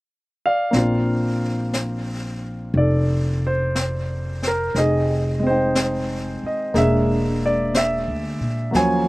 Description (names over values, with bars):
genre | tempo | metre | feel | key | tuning
jazz ballad | 60 BPM | 4/4 | swing 68% on 8ths | Bb major | A4 = 440 Hz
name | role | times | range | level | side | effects
warm concert grand piano | accompaniment | 0.5-9.1 s | F3 to Ab5 | -21 LUFS | equal | none
upright bass | bass | 0.7-9.1 s | E1 to A#2 | -23 LUFS | equal | none
vintage brush drum kit | drums | 0.7-9.1 s | brushed snare drum, hi-hat, snare drum | -28 LUFS | left 1 dB | slapback echo
room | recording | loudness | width
little or no reverb | recorded outdoors, with no room sound | -19 LUFS | side -20 dB against mid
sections
0.7-9.1 A section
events
none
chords
0.0 N.C.; 0.7 Bbmaj9; 4.7 Fm7; 6.7 E7#11